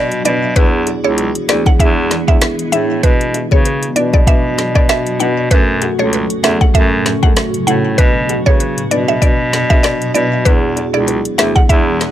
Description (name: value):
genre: dancehall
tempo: 97 BPM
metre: 4/4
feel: swing 56% on 16ths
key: unclear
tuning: A4 = 440 Hz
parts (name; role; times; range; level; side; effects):
- mallet-like synth pluck; melody; 0.0-11.8 s; B4 to F#5; -18 LUFS; right 1 dB; chorus, digital delay
- granular cloud pad; sustained chords; 0.0-12.1 s; A2 to D5; -22 LUFS; equal; built-in reverb, sidechain pumping
- bright bass clarinet; bass; 0.0-12.1 s; C#2 to C#3; -18 LUFS; equal; none
- afro-pop drum kit; drums; 0.1-12.1 s; hi-hat, kick drum, rim click, snare drum; -13 LUFS; equal; none
- marimba with medium mallets; accompaniment; 0.2-11.8 s; A3 to B4; -19 LUFS; right 2 dB; none
- bongos; percussion; 0.2-12.1 s; none; -26 LUFS; left 7 dB; none
room: little or no reverb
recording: none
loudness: -11 LUFS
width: side -12 dB against mid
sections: 0.0-12.1 A section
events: none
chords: 0.0 Bm; 0.6 E7; 3.0 Bm; 5.5 F#m; 8.0 Bm; 10.5 E7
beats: | 0.56 1.18 1.80 2.42 | 3.04 3.65 4.27 4.89 | 5.51 6.13 6.75 7.37 | 7.98 8.60 9.22 9.84 | 10.46 11.08 11.70